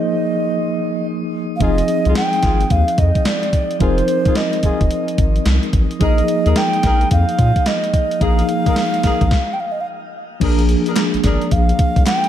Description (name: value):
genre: R&B, new jack swing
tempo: 109 BPM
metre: 4/4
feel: swing 64% on 16ths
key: unclear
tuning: A4 = 440 Hz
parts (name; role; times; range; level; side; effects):
- mellow hollow alto ocarina; melody; 0.0-12.3 s; C5 to G5; -20 LUFS; right 2 dB; shimmer reverb
- mellow tine electric piano; accompaniment; 0.0-12.3 s; F3 to Bb4; -21 LUFS; left 1 dB; medium stereo tremolo, shimmer reverb
- dark horn section; stabs; 1.6-11.4 s; D4 to Bb4; -28 LUFS; left 3 dB; shimmer reverb
- round analog bass; bass; 1.6-12.0 s; F1 to Bb2; -17 LUFS; equal; none
- gated 80s digital drum machine; drums; 1.6-12.3 s; crash cymbal, hi-hat, kick drum, snare drum; -19 LUFS; equal; gated reverb, gated reverb snare
- group handclap; percussion; 11.0-12.2 s; none; -31 LUFS; left 4 dB; none
room: light reverb, small room ambience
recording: none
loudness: -14 LUFS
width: side -10 dB against mid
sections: 0.0-10.4 A section; 10.4-12.3 B section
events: stop 9.3-10.4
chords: 0.0 Bb7sus4; 1.6 Fm7; 6.0 Bb7sus4; 10.4 Bb7